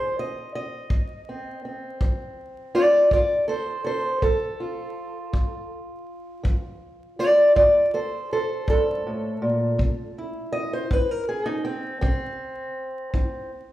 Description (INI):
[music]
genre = acoustic country blues, solo or duo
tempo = 54 BPM (dotted quarters)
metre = 12/8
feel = straight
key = F mixolydian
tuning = A4 = 440 Hz
[part]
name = fingerpicked steel-string acoustic guitar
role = melody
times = 0.0-13.7 s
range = F2 to Eb5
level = -22 LUFS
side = equal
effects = none
[part]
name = kick drum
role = drums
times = 0.9-13.3 s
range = none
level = -24 LUFS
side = equal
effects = none
[sound]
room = wet recital hall reverb, RT60 1.4 s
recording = recorded in a church or concert hall, vinyl crackle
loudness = -21 LUFS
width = side -14 dB against mid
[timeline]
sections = 0.0-13.7 A section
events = steel-string acoustic guitar solo 0.0-13.7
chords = 0.0 F; 9.8 C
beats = | 0.90 2.01 3.12 4.23 | 5.34 6.45 7.56 8.68 | 9.79 10.91 12.02 13.14